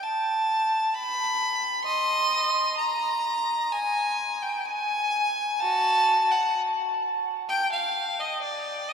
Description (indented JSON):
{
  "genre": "classical, baroque-style suite movement for unaccompanied violin",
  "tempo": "64 BPM",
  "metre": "4/4",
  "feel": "rubato",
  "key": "unclear",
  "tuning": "A4 = 440 Hz",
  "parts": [
    { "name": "clear violin", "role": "solo", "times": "0.0-8.9 s", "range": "F#4 to C6", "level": "-23 LUFS", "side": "equal", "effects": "none" }
  ],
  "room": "wet cathedral reverb, RT60 6.6 s",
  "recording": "none",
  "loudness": "-23 LUFS",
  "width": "side -7 dB against mid",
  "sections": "0.0-8.9 A section",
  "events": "none",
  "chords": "none"
}